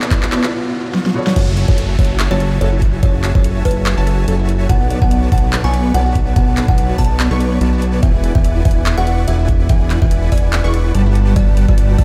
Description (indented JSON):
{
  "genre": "future bass",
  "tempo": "144 BPM",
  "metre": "4/4",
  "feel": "swing 55% on 16ths, half-time",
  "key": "F# minor",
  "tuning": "A4 = 441 Hz",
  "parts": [
    { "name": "clear baby grand piano", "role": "accompaniment", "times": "0.0-1.4 s", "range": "B2 to C#5", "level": "-26 LUFS", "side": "equal", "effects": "sidechain pumping, tape echo" },
    { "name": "dark studio string section", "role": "sustained chords", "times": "0.0-0.5 s", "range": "none", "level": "barely audible", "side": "none", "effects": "none" },
    { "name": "unison pluck", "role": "arpeggios", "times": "0.0-12.0 s", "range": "E4 to D5", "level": "-34 LUFS", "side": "equal", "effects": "none" },
    { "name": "dense compressed supersaw", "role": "riff", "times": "0.0-12.0 s", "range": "G3 to C#6", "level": "-26 LUFS", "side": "equal", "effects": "sidechain pumping" },
    { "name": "fat analog bass", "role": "bass", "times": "0.0-12.0 s", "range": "E1 to B1", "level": "-18 LUFS", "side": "equal", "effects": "sidechain pumping, high-pass filter" },
    { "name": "big-room dance drum kit", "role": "drums", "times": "0.0-12.0 s", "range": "crash cymbal, handclaps, hi-hat, snare drum", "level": "-24 LUFS", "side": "equal", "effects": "overdrive" },
    { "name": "riser and downlifter", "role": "sound effects", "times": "0.0-4.7 s", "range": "none", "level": "-31 LUFS", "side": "equal", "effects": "none" },
    { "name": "electronic kick drum", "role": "drums", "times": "0.1-12.0 s", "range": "none", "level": "-16 LUFS", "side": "equal", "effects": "none" },
    { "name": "kalimba", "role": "melody", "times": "1.4-12.0 s", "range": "B4 to A5", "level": "-27 LUFS", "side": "equal", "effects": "sidechain pumping, tape echo" },
    { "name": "unison pluck", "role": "arpeggios", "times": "1.4-12.0 s", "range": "A4 to C#6", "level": "-36 LUFS", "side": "equal", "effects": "sidechain pumping" }
  ],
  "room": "digital ambience",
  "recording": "played on a big sound system in a bare room, stone room reverb",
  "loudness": "-15 LUFS",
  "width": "mono",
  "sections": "0.0-1.4 A section; 1.4-12.0 B section",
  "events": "build-up 0.0-1.4; drum fill 0.0-0.5, 0.9-1.4; riser 0.0-1.4; filter sweep on supersaw synth 0.0-1.4; break 0.5-1.4; drop 1.4-12.0",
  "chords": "0.0 Bm7; 1.4 F#m9; 4.7 Bm7; 8.0 E7; 11.2 Gmaj7"
}